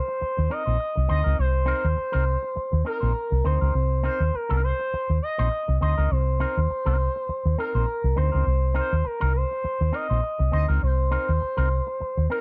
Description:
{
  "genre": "funk",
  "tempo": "102 BPM",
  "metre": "4/4",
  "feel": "swing 56% on 16ths",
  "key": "C minor",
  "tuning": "A4 = 440 Hz",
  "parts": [
    { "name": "expressive portamento lead", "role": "melody", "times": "0.0-12.4 s", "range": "Bb4 to Eb5", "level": "-30 LUFS", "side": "equal", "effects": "chorus, plate reverb" },
    { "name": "electric guitar with an envelope filter", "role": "accompaniment", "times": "0.1-12.4 s", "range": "C4 to C5", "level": "-35 LUFS", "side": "equal", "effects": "plate reverb" },
    { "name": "fingered electric bass", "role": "bass", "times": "0.2-12.3 s", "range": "Bb1 to Eb2", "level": "-24 LUFS", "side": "equal", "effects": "none" }
  ],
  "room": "light reverb",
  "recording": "dark, warm production",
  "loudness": "-24 LUFS",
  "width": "mono",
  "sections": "0.0-12.4 A section",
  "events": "none",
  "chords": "0.0 Cm7",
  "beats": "0.20 0.80 | 1.38 1.97 2.56 3.15 | 3.74 4.33 4.92 5.51 | 6.10 6.69 7.28 7.87 | 8.46 9.05 9.64 10.23 | 10.82 11.42 12.01"
}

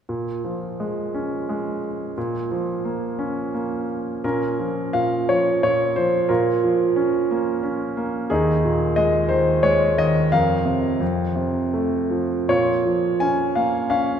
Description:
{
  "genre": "classical, lyrical solo piano",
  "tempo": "79-92 BPM",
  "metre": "3/4",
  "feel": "rubato",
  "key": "Bb minor",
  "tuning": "A4 = 442 Hz",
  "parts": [
    { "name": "clear concert grand piano", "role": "solo", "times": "0.1-14.2 s", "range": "Eb2 to Ab5", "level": "-19 LUFS", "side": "equal", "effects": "none" }
  ],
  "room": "wet church reverb, RT60 3.7 s",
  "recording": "recorded in a church or concert hall",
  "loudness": "-19 LUFS",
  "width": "side -8 dB against mid",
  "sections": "0.1-4.2 A section; 4.2-14.2 B section",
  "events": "none",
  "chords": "0.1 Bbm7; 2.2 Bbm; 8.3 Ebsus4; 10.3 Fsus4; 11.0 F; 12.5 Bbm",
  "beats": "| 0.09 0.79 1.48 | 2.17 2.84 3.53 | 4.23 4.94 5.63 | 6.30 6.96 7.63 | 8.30 8.97 9.63 | 10.32 11.01 11.74 | 12.49 13.21 13.90"
}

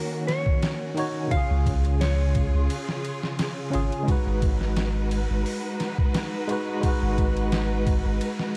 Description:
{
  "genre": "trip hop",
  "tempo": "87 BPM",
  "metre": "4/4",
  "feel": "straight",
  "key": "G# dorian",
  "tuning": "A4 = 440 Hz",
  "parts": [
    { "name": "mellow electric guitar", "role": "melody", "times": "0.0-3.3 s", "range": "A#4 to E#5", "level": "-36 LUFS", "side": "equal", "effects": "vintage 12-bit sampler grit, dub echo" },
    { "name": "barky tine electric piano", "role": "accompaniment", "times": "0.0-8.6 s", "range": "C#3 to C#5", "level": "-31 LUFS", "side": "equal", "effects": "overdrive, tremolo, vintage 12-bit sampler grit" },
    { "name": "warm studio string section", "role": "sustained chords", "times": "0.0-8.6 s", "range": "C#3 to B4", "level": "-36 LUFS", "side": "equal", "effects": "none" },
    { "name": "boom bap sampler-style drum kit", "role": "drums", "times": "0.3-8.6 s", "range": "hi-hat, kick drum, ride cymbal, snare drum", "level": "-30 LUFS", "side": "equal", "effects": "studio reverb" },
    { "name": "soft dub sub bass", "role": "bass", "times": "1.5-8.2 s", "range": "G#1 to C#2", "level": "-27 LUFS", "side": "equal", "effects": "none" }
  ],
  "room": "digital ambience",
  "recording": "dark, warm production, vinyl crackle",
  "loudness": "-25 LUFS",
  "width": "mono",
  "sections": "0.0-8.6 A section",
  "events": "none",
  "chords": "0.0 D#m7; 1.3 C#; 4.1 G#m7",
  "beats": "0.63 | 1.32 2.01 2.70 3.39 | 4.08 4.77 5.46 6.15 | 6.84 7.53 8.22"
}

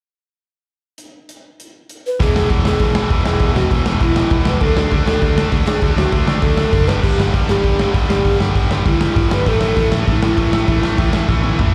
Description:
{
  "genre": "punk rock",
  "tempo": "198 BPM",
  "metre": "4/4",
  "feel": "straight",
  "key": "unclear",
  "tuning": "A4 = 444 Hz",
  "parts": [
    { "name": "big rock drum kit", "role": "drums", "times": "1.0-11.7 s", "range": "crash cymbal, hi-hat, kick drum, snare drum, toms", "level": "-20 LUFS", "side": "equal", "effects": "none" },
    { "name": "breathy round clay ocarina", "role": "melody", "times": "2.1-11.6 s", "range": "E4 to B4", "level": "-23 LUFS", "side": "equal", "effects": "slapback echo" },
    { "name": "distorted electric guitar", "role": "riff", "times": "2.2-11.7 s", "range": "E2 to D4", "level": "-28 LUFS", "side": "equal", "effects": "overdrive, slapback echo" },
    { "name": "tight distorted guitar", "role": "riff", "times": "2.2-11.7 s", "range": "E2 to D4", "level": "-26 LUFS", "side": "equal", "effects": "distortion, slapback echo" },
    { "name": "modern bright picked electric bass", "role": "bass", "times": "2.2-11.7 s", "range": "E1 to D2", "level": "-21 LUFS", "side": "equal", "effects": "none" }
  ],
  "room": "light reverb",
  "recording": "live gig heard through the venue's PA, club reverb",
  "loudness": "-16 LUFS",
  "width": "mono",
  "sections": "1.0-2.2 A section; 2.2-11.7 B section",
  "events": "drum fill 11.3-11.7",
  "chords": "1.0 N.C.; 2.2 E; 4.6 D5; 6.9 G5; 9.5 A5",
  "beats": "| 0.98 1.29 1.59 1.89 | 2.19 2.50 2.80 3.10 | 3.41 3.71 4.01 4.31 | 4.62 4.92 5.22 5.52 | 5.83 6.13 6.43 6.73 | 7.04 7.34 7.64 7.95 | 8.25 8.55 8.86 9.16 | 9.46 9.77 10.07 10.38 | 10.68 10.98 11.29 11.59"
}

